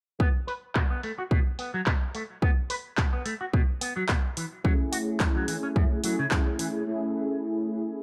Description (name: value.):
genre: nu-disco, nu disco.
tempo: 108 BPM.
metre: 4/4.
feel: swing 54% on 16ths.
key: unclear.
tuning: A4 = 440 Hz.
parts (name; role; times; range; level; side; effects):
electric guitar with an envelope filter; riff; 0.2-6.7 s; F#2 to B4; -35 LUFS; equal; subtle chorus, low-pass filter, delay.
electronic kick drum; drums; 0.2-6.4 s; none; -27 LUFS; equal; overdrive.
house drum kit; drums; 0.5-6.7 s; handclaps, hi-hat; -34 LUFS; equal; overdrive, low-pass filter on hats, low-pass filter on snare, low-pass filter on room.
mellow synth brass; accompaniment; 4.6-8.0 s; A3 to G#4; -31 LUFS; equal; chorus, sidechain pumping.
room: digital ambience.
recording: none.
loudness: -28 LUFS.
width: mono.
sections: 0.2-8.0 A section.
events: filter sweep on drum 0.2-8.0; break 6.9-8.0.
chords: 0.2 B5; 4.4 F#m7.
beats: | 0.20 0.76 1.31 1.87 | 2.43 2.98 3.54 4.09 | 4.65 5.20 5.76 6.31 | 6.87 7.43 7.98.